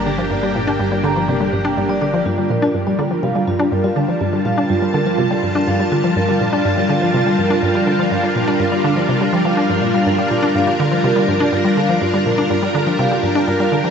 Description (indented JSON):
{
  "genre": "ambient, sequencer-driven space music",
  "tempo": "123 BPM",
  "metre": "4/4",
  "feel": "straight",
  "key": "G minor",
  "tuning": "A4 = 440 Hz",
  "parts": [
    { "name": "string machine, full ensemble", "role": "sustained chords", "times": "0.0-13.9 s", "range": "G3 to A5", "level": "-18 LUFS", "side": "left 1 dB", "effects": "ensemble chorus" },
    { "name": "vibraphone with medium hard mallets", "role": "arpeggios", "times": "0.0-13.9 s", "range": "F4 to Bb5", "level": "-21 LUFS", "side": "right 2 dB", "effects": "auto-pan, tape echo" },
    { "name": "resonant blip pluck", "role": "riff", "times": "0.0-13.9 s", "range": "G2 to D4", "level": "-19 LUFS", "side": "equal", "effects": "chorus, tape echo" },
    { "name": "fat analog bass", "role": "bass", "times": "0.0-2.2 s", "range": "G1", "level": "-28 LUFS", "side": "equal", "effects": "none" },
    { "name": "wind-like tuned noise texture", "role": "texture", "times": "0.0-2.3 s", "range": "D5", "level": "-38 LUFS", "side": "right 2 dB", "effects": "none" }
  ],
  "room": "wet huge ambient reverb, RT60 7.8 s",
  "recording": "nothing above 7.9 kHz",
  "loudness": "-14 LUFS",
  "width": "side -7 dB against mid",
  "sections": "0.0-2.3 A section; 2.3-13.9 B section",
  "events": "none",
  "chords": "0.0 Gm; 2.3 Gm7"
}